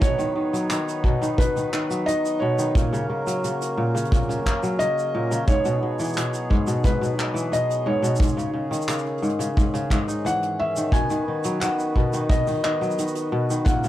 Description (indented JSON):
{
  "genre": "folktronica",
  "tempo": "88 BPM",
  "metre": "4/4",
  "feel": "straight",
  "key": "B major",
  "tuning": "A4 = 440 Hz",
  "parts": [
    { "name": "felt-muted upright piano", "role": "melody", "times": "0.0-13.9 s", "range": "B4 to G#5", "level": "-27 LUFS", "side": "equal", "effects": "tape echo" },
    { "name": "hand-pumped harmonium", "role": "sustained chords", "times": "0.0-13.9 s", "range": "C#3 to B4", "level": "-31 LUFS", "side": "right 1 dB", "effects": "none" },
    { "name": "kora", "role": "arpeggios", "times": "0.0-13.9 s", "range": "G#2 to D#4", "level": "-24 LUFS", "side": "left 1 dB", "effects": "tape echo" },
    { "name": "kick drum", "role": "drums", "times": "0.0-13.8 s", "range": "none", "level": "-21 LUFS", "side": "equal", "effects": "none" },
    { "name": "soft brush drum kit", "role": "drums", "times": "0.0-13.9 s", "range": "handclaps, hi-hat, shaker", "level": "-32 LUFS", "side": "right 1 dB", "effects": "none" }
  ],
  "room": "little or no reverb",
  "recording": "none",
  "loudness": "-20 LUFS",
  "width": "side -13 dB against mid",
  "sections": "0.0-13.9 A section",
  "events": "none",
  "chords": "0.0 B; 2.8 F#; 5.5 Eadd9; 8.2 C#madd9; 10.9 B"
}